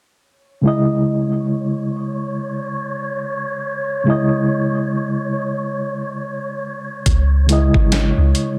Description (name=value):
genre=trip hop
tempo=70 BPM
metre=4/4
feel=swing 59% on 16ths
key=C# minor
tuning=A4 = 439 Hz
part: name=wind-like tuned noise texture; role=texture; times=1.5-8.6 s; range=C#5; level=-29 LUFS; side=equal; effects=built-in reverb
part: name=reed electric piano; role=accompaniment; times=0.6-8.6 s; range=C#3 to D#5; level=-22 LUFS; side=equal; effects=fast tremolo, harmonic tremolo, tape echo
part: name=soft 808-style bass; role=bass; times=7.1-8.3 s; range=G#1 to C#2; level=-17 LUFS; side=equal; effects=none
part: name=dusty soul sampler-style drum kit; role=drums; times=7.1-8.6 s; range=hi-hat, kick drum, snare drum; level=-20 LUFS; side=equal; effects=none
room=light reverb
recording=none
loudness=-19 LUFS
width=mono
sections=0.2-8.6 A section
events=none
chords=0.2 C#madd9